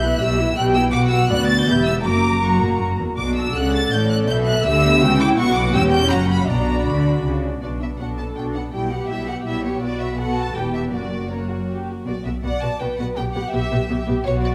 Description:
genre	quick classical-period movement for string orchestra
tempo	163 BPM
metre	3/4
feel	straight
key	B minor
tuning	A4 = 438 Hz
part	clear studio violin section	melody	0.0-14.5 s	C#5 to A6	-28 LUFS	equal	none
part	dark studio violin section	second line	0.0-14.5 s	F#4 to A#5	-28 LUFS	equal	none
part	warm studio viola section	accompaniment	0.0-14.5 s	G3 to A4	-26 LUFS	equal	none
part	dark studio double bass section	bass	0.0-14.5 s	E1 to D2	-26 LUFS	equal	none
part	warm studio cello section	bass	0.0-14.5 s	D2 to D3	-26 LUFS	equal	none
room	moderate scoring stage reverb, RT60 1.8 s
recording	none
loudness	-20 LUFS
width	mono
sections	0.0-7.6 A section; 7.6-14.5 A section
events	none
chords	0.0 Em/B; 0.9 Bm; 1.7 Em; 2.0 F#; 3.2 Bm; 4.3 Em/B; 5.4 Bm; 5.8 Em; 6.1 F#; 6.5 Bm; 8.7 Em/B; 9.8 B5; 10.6 Em; 10.9 F#; 12.1 Bm; 13.2 Em/B

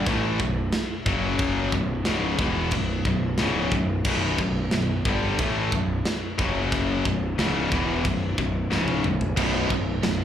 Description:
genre	heavy metal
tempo	90 BPM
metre	4/4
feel	straight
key	unclear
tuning	A4 = 441 Hz
part	high-gain distorted guitar	riff	0.0-10.2 s	B1 to A3	-30 LUFS	right 3 dB	distortion, slapback echo
part	tight distorted guitar	riff	0.0-10.2 s	B1 to A3	-27 LUFS	left 7 dB	distortion, slapback echo
part	fuzz picked electric bass	bass	0.0-10.2 s	B0 to A1	-27 LUFS	right 1 dB	overdrive
part	tight metal drum kit	drums	0.1-10.2 s	china cymbal, crash cymbal, kick drum, snare drum, toms	-28 LUFS	right 1 dB	none
part	heavy high-gain guitar	riff	9.4-10.2 s	B1 to B2	-28 LUFS	right 9 dB	distortion
room	small room ambience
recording	live gig heard through the venue's PA, club reverb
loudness	-22 LUFS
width	side -10 dB against mid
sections	0.0-10.2 A section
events	drum fill 8.7-9.4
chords	0.0 B5; 1.1 F#5; 1.7 Bm; 6.4 F#5; 7.0 B5

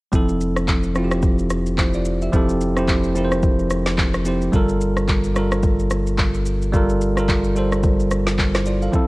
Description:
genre	amapiano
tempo	109 BPM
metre	4/4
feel	swing 58% on 16ths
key	G dorian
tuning	A4 = 439 Hz
part	bell-like tine electric piano	accompaniment	0.1-9.1 s	F3 to F5	-20 LUFS	right 1 dB	none
part	punchy sub bass	bass	0.1-8.9 s	F1 to G1	-23 LUFS	equal	none
part	deep house drum kit	drums	0.1-9.1 s	handclaps, kick drum, rim click, shaker, snare drum	-21 LUFS	equal	none
room	digital ambience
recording	worn, warbling old tape, cassette tape, warbly pitch drift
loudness	-17 LUFS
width	side -21 dB against mid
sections	0.1-9.1 A section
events	none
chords	0.1 Fmaj7; 2.3 Fmaj9; 4.5 Gm9

